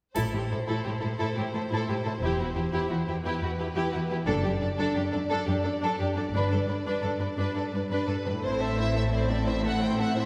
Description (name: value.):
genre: cinematic, heroic adventure film score.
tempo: 116 BPM (dotted quarters).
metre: 12/8.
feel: straight.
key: unclear.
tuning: A4 = 439 Hz.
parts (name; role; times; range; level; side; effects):
warm symphonic violin section; melody; 0.2-10.3 s; B4 to G5; -38 LUFS; equal; none.
warm symphonic violin section; second line; 0.2-10.3 s; F#4 to E5; -35 LUFS; equal; none.
rich symphonic viola section; accompaniment; 0.2-10.3 s; A3 to E4; -35 LUFS; equal; none.
warm symphonic cello section; bass; 0.2-10.3 s; E2 to A2; -33 LUFS; equal; none.
warm symphonic double bass section; bass; 0.2-10.3 s; E1 to A1; -35 LUFS; equal; none.
triangle; percussion; 0.2-0.8 s; none; -51 LUFS; equal; none.
concert harp; arpeggios; 8.2-10.3 s; A2 to A4; -41 LUFS; equal; none.
room: wet concert hall reverb, RT60 1.8 s.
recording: heard from further back in the room.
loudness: -28 LUFS.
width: mono.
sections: 0.2-8.4 A section; 8.4-10.3 B section.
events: none.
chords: 0.2 Am; 2.2 Em; 4.3 D/F#; 6.3 G; 8.4 Am.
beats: | 0.16 0.68 1.20 1.71 | 2.23 2.74 3.25 3.77 | 4.28 4.79 5.31 5.82 | 6.34 6.86 7.38 7.90 | 8.43 8.95 9.47 9.99.